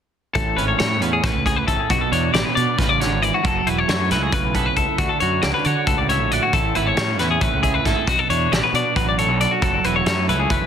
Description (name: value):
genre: math rock and midwest emo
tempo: 272 BPM (eighths)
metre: 7/8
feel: straight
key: A major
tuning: A4 = 440 Hz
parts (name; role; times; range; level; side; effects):
- twelve-string electric guitar; accompaniment; 0.3-10.7 s; A2 to E5; -24 LUFS; right 12 dB; none
- clean electric guitar; arpeggios; 0.3-10.7 s; F#4 to D5; -20 LUFS; left 6 dB; lush chorus, analog delay
- fuzz fingered electric bass; bass; 0.4-10.7 s; E1 to D3; -24 LUFS; equal; overdrive
- loose indie drum kit; drums; 0.4-10.6 s; hi-hat, kick drum, snare drum; -24 LUFS; equal; none
room: light reverb, small room ambience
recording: dense, heavily limited modern master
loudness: -17 LUFS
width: side -8 dB against mid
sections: 0.4-10.7 A section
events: none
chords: 0.4 Amaj9; 1.9 Bm7; 3.4 F#m7; 5.0 Dmaj9; 6.5 Amaj9; 8.1 Bm7; 9.6 F#m7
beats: | 0.35 0.57 0.80 1.02 1.24 1.46 1.68 | 1.90 2.12 2.34 2.56 2.78 3.00 3.23 | 3.44 3.67 3.89 4.11 4.33 4.55 4.77 | 4.99 5.21 5.43 5.65 5.87 6.09 6.31 | 6.54 6.75 6.98 7.20 7.42 7.64 7.86 | 8.08 8.30 8.52 8.74 8.96 9.18 9.40 | 9.62 9.84 10.06 10.28 10.50